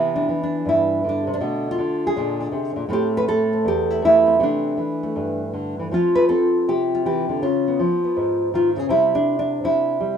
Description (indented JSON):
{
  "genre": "solo jazz",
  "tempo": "161 BPM",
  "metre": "4/4",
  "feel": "swing 66% on 8ths, rubato",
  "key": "C major",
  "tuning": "A4 = 440 Hz",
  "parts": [
    { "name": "nylon-string guitar", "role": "solo", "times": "0.0-10.2 s", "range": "E2 to B4", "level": "-18 LUFS", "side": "equal", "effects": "none" }
  ],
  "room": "moderate small room reverb, RT60 0.5 s",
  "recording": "rough home demo mix",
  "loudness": "-18 LUFS",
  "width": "side -7 dB against mid",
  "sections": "0.0-10.2 A section",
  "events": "none",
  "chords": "0.0 Cmaj7; 1.4 Bm7b5; 2.2 Bb7; 2.9 Am7; 4.4 C69; 5.9 F; 7.4 Db9; 8.9 C"
}